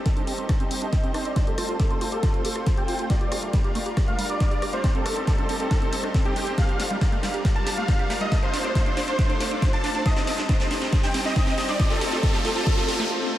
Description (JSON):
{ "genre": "uplifting trance", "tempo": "138 BPM", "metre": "4/4", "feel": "straight", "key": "C dorian", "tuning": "A4 = 445 Hz", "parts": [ { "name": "lush unison pad", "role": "sustained chords", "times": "0.1-13.0 s", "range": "G3 to D5", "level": "-31 LUFS", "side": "equal", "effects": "chorus, sidechain pumping" }, { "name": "liquid acid bass", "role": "arpeggios", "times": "0.1-13.1 s", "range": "G3 to G4", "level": "-31 LUFS", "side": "right 2 dB", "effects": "phaser, sidechain pumping, tape echo" }, { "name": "big-room dance drum kit", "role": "drums", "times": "0.1-13.1 s", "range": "hi-hat, rim click, snare drum", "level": "-32 LUFS", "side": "left 1 dB", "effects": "high-pass filter on snare, high-pass filter on hats" }, { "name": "electronic kick drum", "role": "drums", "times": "0.1-12.8 s", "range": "none", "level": "-23 LUFS", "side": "equal", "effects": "none" }, { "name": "dense compressed supersaw", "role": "melody", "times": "0.6-12.9 s", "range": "G4 to A5", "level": "-29 LUFS", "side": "equal", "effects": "sidechain pumping, low-pass filter, diffuse ambient delay" }, { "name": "riser and swell", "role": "sound effects", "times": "11.0-13.4 s", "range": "none", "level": "-35 LUFS", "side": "left 1 dB", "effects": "none" } ], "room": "wet huge ambient reverb, RT60 7.1 s", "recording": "dreamy mix soaked in reverb", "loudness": "-21 LUFS", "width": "side -13 dB against mid", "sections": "0.0-13.4 A section", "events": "build-up 0.0-13.4; drum fill 0.0-13.1; filter sweep on supersaw synth 0.0-13.4; filter sweep on acid bass 0.0-13.4; swell 12.7-13.4; stop 13.1", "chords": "0.0 Cm; 1.4 F; 3.1 Gm7; 4.8 Cm; 6.6 Gm7; 8.3 Dm; 10.1 Cm; 11.8 F" }